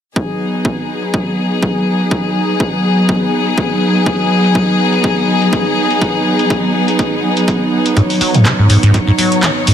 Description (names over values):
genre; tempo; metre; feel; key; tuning
acid house; 123 BPM; 4/4; swing 55% on 16ths; unclear; A4 = 439 Hz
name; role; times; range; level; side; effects
dark chamber string section; sustained chords; 0.2-9.7 s; Gb3 to Db5; -13 LUFS; equal; sidechain pumping
booming analog drum machine; drums; 0.2-9.7 s; handclaps, hi-hat; -19 LUFS; equal; low-pass filter on hats, low-pass filter on snare
electronic kick drum; drums; 0.2-9.5 s; none; -19 LUFS; equal; high-pass filter on kick
acid bass, saw; riff; 8.0-9.7 s; Ab2 to Gb3; -10 LUFS; equal; ensemble chorus, sidechain pumping
room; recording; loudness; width
light reverb; none; -11 LUFS; side -9 dB against mid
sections
0.2-9.7 A section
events
filter sweep on drum 0.2-9.7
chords
0.2 Abm7